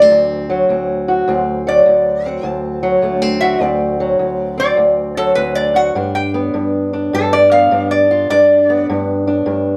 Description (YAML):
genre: acoustic country blues, solo or duo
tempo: 103 BPM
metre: 4/4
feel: swing 66% on 8ths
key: D mixolydian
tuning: A4 = 440 Hz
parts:
  - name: lap resonator guitar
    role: melody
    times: 0.0-8.9 s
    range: A4 to A5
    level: -15 LUFS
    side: equal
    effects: none
  - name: fingerpicked old ladder-braced acoustic guitar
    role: accompaniment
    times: 0.0-9.8 s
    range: D2 to F#4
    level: -18 LUFS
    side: equal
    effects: none
room: moderate studio reverb, RT60 0.7 s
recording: none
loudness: -15 LUFS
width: mono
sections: 0.0-9.8 A section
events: resonator guitar played with a steel bar solo 0.0-9.8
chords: 0.0 D7; 6.0 G